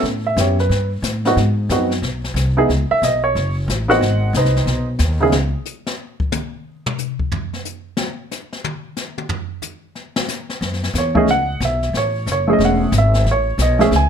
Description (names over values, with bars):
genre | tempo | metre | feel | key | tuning
jazz piano trio | 182 BPM | 4/4 | swing 64% on 8ths | unclear | A4 = 439 Hz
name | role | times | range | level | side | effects
warm baby grand piano | melody | 0.0-5.3, 11.0-14.1 s | C#3 to G#5 | -17 LUFS | right 2 dB | none
upright bass | bass | 0.0-5.5, 10.6-14.1 s | E1 to A2 | -19 LUFS | equal | none
jazz brush drum kit | drums | 0.0-14.1 s | brushed snare drum, hi-hat, kick drum, snare drum, toms | -24 LUFS | left 3 dB | none
room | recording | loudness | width
light reverb | none | -16 LUFS | side -8 dB against mid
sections
0.0-5.3 A section; 5.3-14.1 A section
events
grand piano solo 0.0-14.1; drum solo 5.3-10.6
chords
0.0 A7; 1.4 G#7#9; 2.7 Badd9; 3.3 F#m; 4.0 G#7#9; 5.3 N.C.; 10.6 F#m7